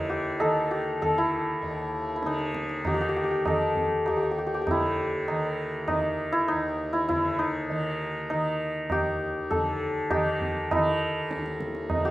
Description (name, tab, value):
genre	indian classical, Hindustani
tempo	99 BPM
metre	5/4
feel	straight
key	Eb raga marwa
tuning	A4 = 438 Hz
part	santur	melody	0.0-12.1 s	Eb4 to D5	-27 LUFS	left 1 dB	none
part	tanpura	drone	0.0-12.1 s	Eb2 to Eb3	-32 LUFS	equal	none
part	tabla	percussion	0.4-12.1 s	none	-30 LUFS	right 2 dB	slapback echo
room	light reverb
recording	recorded outdoors, with no room sound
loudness	-25 LUFS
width	side -16 dB against mid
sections	0.0-12.1 A section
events	none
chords	none